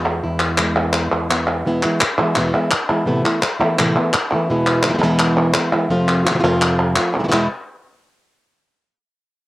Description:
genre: flamenco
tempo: 169 BPM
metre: 4/4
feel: straight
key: unclear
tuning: A4 = 442 Hz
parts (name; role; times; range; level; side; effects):
- flamenco guitar; melody; 0.0-7.5 s; E2 to F4; -18 LUFS; equal; cassette tape
- palmas hand claps; percussion; 0.1-7.4 s; none; -18 LUFS; equal; none
room: moderate booth ambience, RT60 0.2 s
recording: home recording on cassette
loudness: -15 LUFS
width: side -17 dB against mid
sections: 0.0-1.7 A section; 1.7-7.3 B section; 7.3-8.7 C section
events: none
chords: 0.0 E; 3.1 Amadd9; 4.5 E; 5.9 F; 7.3 N.C.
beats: | 0.23 0.59 0.94 1.30 | 1.66 2.01 2.37 2.72 | 3.08 3.43 3.78 4.14 | 4.49 4.85 5.20 5.56 | 5.91 6.26 6.62 6.97 | 7.33

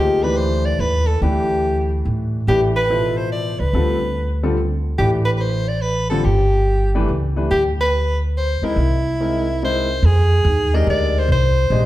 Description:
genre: modal jazz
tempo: 143 BPM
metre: 3/4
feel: swing 66% on 8ths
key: D dorian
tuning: A4 = 440 Hz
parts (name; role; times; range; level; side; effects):
- warm soprano saxophone; melody; 0.0-11.9 s; E4 to Eb5; -20 LUFS; equal; none
- clear grand piano; accompaniment; 0.0-11.9 s; B2 to Eb5; -24 LUFS; left 2 dB; none
- upright bass; bass; 0.0-11.9 s; G1 to A2; -19 LUFS; equal; none
room: wet large studio reverb, RT60 1.3 s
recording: heard from further back in the room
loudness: -16 LUFS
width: side -15 dB against mid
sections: 0.0-10.0 A section; 10.0-11.9 B section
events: none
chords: 0.0 D9sus4; 8.8 C7alt; 10.0 Fm11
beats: 0.37 0.79 | 1.21 1.63 2.05 | 2.47 2.89 3.31 | 3.73 4.15 4.57 | 4.99 5.41 5.83 | 6.25 6.67 7.09 | 7.51 7.93 8.35 | 8.77 9.19 9.61 | 10.03 10.45 10.87 | 11.29 11.71

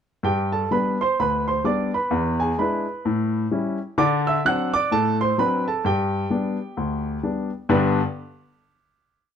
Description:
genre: jazz, stride piano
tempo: 129 BPM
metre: 4/4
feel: swing 61% on 8ths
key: G major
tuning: A4 = 439 Hz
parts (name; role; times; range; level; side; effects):
- clear baby grand piano; solo; 0.2-8.0 s; D2 to F#6; -20 LUFS; equal; none
room: moderate studio reverb, RT60 0.8 s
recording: dark, warm production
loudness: -20 LUFS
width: side -8 dB against mid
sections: 0.2-7.7 A section; 7.7-9.4 final chord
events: none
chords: 0.2 G; 2.1 E7; 3.0 A7; 4.0 D7; 5.8 G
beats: | 0.24 0.71 1.18 1.64 | 2.11 2.58 3.05 3.51 | 3.98 4.45 4.91 5.38 | 5.84 6.31 6.78 7.24 | 7.71

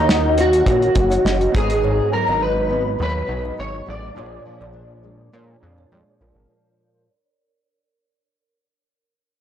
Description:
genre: indie pop, bedroom pop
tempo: 103 BPM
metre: 4/4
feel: straight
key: unclear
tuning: A4 = 441 Hz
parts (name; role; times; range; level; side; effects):
- electric guitar through a small old amp; melody; 0.0-5.9 s; Eb4 to D5; -19 LUFS; equal; ensemble chorus
- kalimba; second line; 0.0-6.3 s; Bb4 to Eb5; -28 LUFS; right 3 dB; ensemble chorus, tape echo
- nylon-string guitar; accompaniment; 0.0-7.1 s; Ab2 to Gb4; -28 LUFS; left 2 dB; ensemble chorus, warbly pitch drift
- warm analog keys; accompaniment; 0.0-6.5 s; Bb3 to Bb5; -33 LUFS; right 6 dB; chorus, cassette tape
- chorused synth bass; bass; 0.0-6.5 s; Gb1 to Bb2; -24 LUFS; equal; tube saturation
- cloth-damped thuddy drum kit; drums; 0.1-1.8 s; hi-hat, kick drum, snare drum; -20 LUFS; equal; none
room: light reverb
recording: blown-out, overdriven recording, overdrive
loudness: -16 LUFS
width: side -10 dB against mid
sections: 0.0-6.5 A section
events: fade-out 0.0-6.5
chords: 0.0 Ebm7; 1.5 Abm7; 4.2 Bb7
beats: 0.08 0.66 1.25 | 1.83 2.41 3.00 3.58 | 4.16 4.75 5.33 5.91

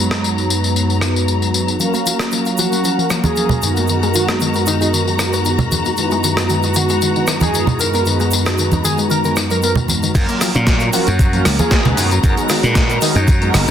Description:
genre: nu-disco, nu disco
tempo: 115 BPM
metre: 4/4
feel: straight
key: F# major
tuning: A4 = 440 Hz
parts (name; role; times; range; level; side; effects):
- mellow synth brass; accompaniment; 0.0-13.7 s; F#2 to E#5; -18 LUFS; equal; chorus, sidechain pumping
- rich studio string section; sustained chords; 0.0-13.7 s; F#3 to A#5; -24 LUFS; left 1 dB; sidechain pumping, low-pass filter
- dusty soul sampler-style drum kit; drums; 0.1-13.7 s; crash cymbal, hi-hat, rim click, snare drum, tambourine; -20 LUFS; left 2 dB; overdrive, soft clipping on snare
- wide unison pluck; arpeggios; 1.8-13.7 s; D#3 to E#4; -25 LUFS; left 3 dB; sidechain pumping, dub echo
- cabasa and congas; percussion; 1.8-13.7 s; none; -21 LUFS; right 3 dB; none
- wide unison lead; melody; 2.6-13.2 s; D#4 to A#4; -22 LUFS; right 1 dB; lush chorus, dub echo
- electronic kick drum; drums; 10.1-13.4 s; none; -15 LUFS; equal; none
- glassy slap bass; bass; 10.2-13.7 s; F#1 to A#2; -16 LUFS; equal; none
room: light reverb, digital ambience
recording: dense, heavily limited modern master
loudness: -13 LUFS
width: side -9 dB against mid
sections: 0.0-10.1 A section; 10.1-13.7 B section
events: drop 10.1-13.7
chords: 0.0 B6/F#; 1.8 F#maj7; 3.6 G#m9/F#; 6.0 Emaj7/F#; 8.1 B6/F#; 10.1 F#maj7; 12.0 G#m9/F#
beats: 0.23 0.76 1.28 | 1.80 2.32 2.84 3.37 | 3.89 4.41 4.93 5.45 | 5.97 6.50 7.02 7.54 | 8.06 8.58 9.11 9.63 | 10.15 10.67 11.19 11.71 | 12.23 12.76 13.28

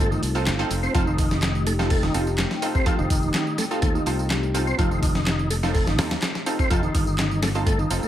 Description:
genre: breakbeat, breaks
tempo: 125 BPM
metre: 4/4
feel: straight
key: unclear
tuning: A4 = 440 Hz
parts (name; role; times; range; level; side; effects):
- dark analog pad; sustained chords; 0.0-8.1 s; A3 to G4; -33 LUFS; left 2 dB; chorus, phaser, sidechain pumping
- tonewheel organ; riff; 0.0-8.1 s; Eb3 to C4; -27 LUFS; equal; chorus vibrato, fast rotary speaker, tape echo
- orchestra-hit-like synth stab; stabs; 0.0-8.1 s; C4 to A4; -28 LUFS; right 2 dB; built-in reverb, tape echo
- fingered electric bass; bass; 0.0-8.1 s; F1 to Eb2; -25 LUFS; equal; none
- garage drum kit; drums; 0.1-8.1 s; handclaps, hi-hat, tambourine; -33 LUFS; right 1 dB; overdrive
- dusty soul sampler-style drum kit; drums; 0.2-8.0 s; hi-hat, kick drum, snare drum; -24 LUFS; equal; tape echo
room: light reverb, digital ambience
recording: echo-heavy mix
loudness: -20 LUFS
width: side -12 dB against mid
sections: 0.0-8.1 A section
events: none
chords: 0.0 F7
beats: 0.47 | 0.94 1.43 1.91 2.38 | 2.87 3.35 3.83 4.30 | 4.79 5.26 5.75 6.22 | 6.71 7.18 7.67

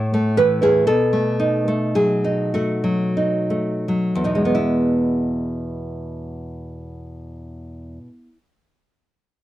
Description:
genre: romantic piece for solo classical guitar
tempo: 26-43 BPM (dotted quarters)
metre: 6/8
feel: rubato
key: E major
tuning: A4 = 438 Hz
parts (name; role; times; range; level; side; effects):
- nylon-string guitar; solo; 0.0-8.4 s; E2 to C#5; -19 LUFS; equal; none
room: light reverb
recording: dry, close 1970s-style studio recording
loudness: -17 LUFS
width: side -14 dB against mid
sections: 0.0-4.6 A section; 4.6-8.1 B section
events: slowing down 0.0-4.6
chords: 0.0 A; 0.9 B7; 4.6 E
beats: | 0.88 2.54 | 4.56 6.37

